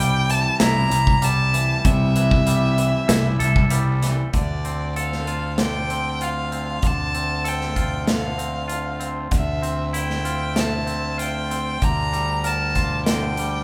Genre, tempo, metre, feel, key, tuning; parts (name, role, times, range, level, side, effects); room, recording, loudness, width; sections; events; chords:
post-rock; 96 BPM; 4/4; straight; D minor; A4 = 440 Hz
rich violin; melody; 0.0-13.6 s; D5 to Bb5; -28 LUFS; equal
twangy electric guitar; arpeggios; 0.0-13.6 s; C3 to Bb4; -30 LUFS; equal
fuzz fingered electric bass; bass; 0.0-13.6 s; C2 to D2; -26 LUFS; equal; overdrive
big rock drum kit; drums; 0.3-13.5 s; hi-hat, kick drum, snare drum; -26 LUFS; equal
moderate large studio reverb, RT60 0.8 s; band playing live in one room; -21 LUFS; mono
0.0-4.3 A section; 4.3-13.6 B section
0.0 C6; 4.3 Dm7; 9.3 Fmaj7/D; 11.8 Gm7/D